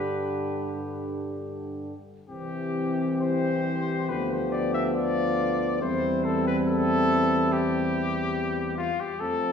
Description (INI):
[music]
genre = classical, brass quintet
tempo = 69 BPM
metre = 4/4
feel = rubato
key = C major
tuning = A4 = 440 Hz
[part]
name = dark trumpet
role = melody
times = 0.0-9.5 s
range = F4 to E5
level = -29 LUFS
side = left 3 dB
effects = none
[part]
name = mellow flugelhorn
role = second line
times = 0.0-9.5 s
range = C4 to G4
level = -35 LUFS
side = right 1 dB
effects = none
[part]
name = mellow French horn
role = accompaniment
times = 0.0-9.5 s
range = A3 to D4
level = -30 LUFS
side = left 3 dB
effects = none
[part]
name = mellow euphonium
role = accompaniment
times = 0.0-9.5 s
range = D3 to G3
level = -32 LUFS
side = right 3 dB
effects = none
[part]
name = warm tuba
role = bass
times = 0.0-9.5 s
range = C2 to G2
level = -32 LUFS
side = right 1 dB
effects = none
[sound]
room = wet recital hall reverb, RT60 1.5 s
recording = heard from further back in the room, small room ambience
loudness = -24 LUFS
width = side -7 dB against mid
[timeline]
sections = 0.0-9.5 A section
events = none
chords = 0.0 G; 2.3 C; 4.1 Bdim/D; 5.8 C/E